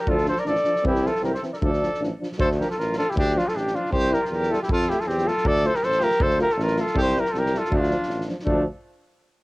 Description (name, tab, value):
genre	balkan folk, Balkan brass band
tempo	158 BPM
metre	2/4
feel	swing 55% on 16ths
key	D minor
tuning	A4 = 440 Hz
part	mellow cornet	melody	0.0-8.6 s	D4 to D5	-24 LUFS	equal	cassette tape
part	clear trumpet	second line	0.0-8.6 s	A3 to Bb4	-30 LUFS	right 1 dB	cassette tape
part	clear euphonium	accompaniment	0.1-8.6 s	C4 to F4	-31 LUFS	left 2 dB	cassette tape
part	warm euphonium	accompaniment	0.1-8.6 s	E3 to A3	-32 LUFS	right 2 dB	cassette tape
part	warm tuba	bass	0.1-8.6 s	A1 to F2	-25 LUFS	equal	none
part	natural country drum kit	percussion	0.1-8.6 s	kick drum, snare drum	-29 LUFS	equal	cassette tape
room	small room ambience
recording	home recording on cassette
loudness	-20 LUFS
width	side -22 dB against mid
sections	0.0-2.4 A section; 2.4-8.5 B section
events	speeding up 0.0-9.2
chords	0.0 Dm; 0.9 C; 1.6 Dm; 3.9 C; 4.7 F; 5.5 Dm; 7.0 C; 7.7 Dm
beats	| 0.08 0.47 | 0.85 1.24 | 1.63 2.01 | 2.40 2.78 | 3.17 3.55 | 3.93 4.31 | 4.69 5.07 | 5.45 5.83 | 6.21 6.58 | 6.96 7.34 | 7.72 8.09 | 8.47